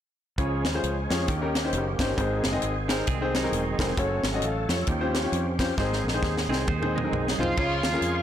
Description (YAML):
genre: uptempo gospel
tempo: 133 BPM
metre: 4/4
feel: swing 60% on 8ths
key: Db major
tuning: A4 = 438 Hz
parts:
  - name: clear concert grand piano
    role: accompaniment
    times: 0.4-8.2 s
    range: Ab2 to F5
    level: -28 LUFS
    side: left 2 dB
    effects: none
  - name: bright tonewheel organ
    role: sustained chords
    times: 0.4-8.2 s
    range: Eb3 to Db6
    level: -33 LUFS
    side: right 3 dB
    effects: fast rotary speaker, chorus vibrato
  - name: fingered electric bass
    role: bass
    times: 0.4-8.2 s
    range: Fb1 to F2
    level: -30 LUFS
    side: equal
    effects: none
  - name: tight funk drum kit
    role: drums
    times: 0.4-8.1 s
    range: crash cymbal, hi-hat, kick drum, snare drum, toms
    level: -29 LUFS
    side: equal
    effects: none
  - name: clean electric guitar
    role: second line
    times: 2.9-7.6 s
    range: Gb3 to C5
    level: -35 LUFS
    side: right 9 dB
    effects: none
  - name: mellow horn section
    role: melody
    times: 7.4-8.2 s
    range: F3 to F4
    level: -31 LUFS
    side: left 2 dB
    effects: none
  - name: overdriven slide guitar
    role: melody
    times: 7.4-8.2 s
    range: F4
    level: -28 LUFS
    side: right 3 dB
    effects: tape echo
room: light reverb, small room ambience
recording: blown-out, overdriven recording, overdrive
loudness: -24 LUFS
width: side -10 dB against mid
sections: 0.4-7.6 A section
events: drum fill 5.8-7.6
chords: 0.4 Db; 1.3 Eb7; 2.2 Ab; 4.0 Gbm; 4.9 Eb13; 5.8 Ab; 7.6 Db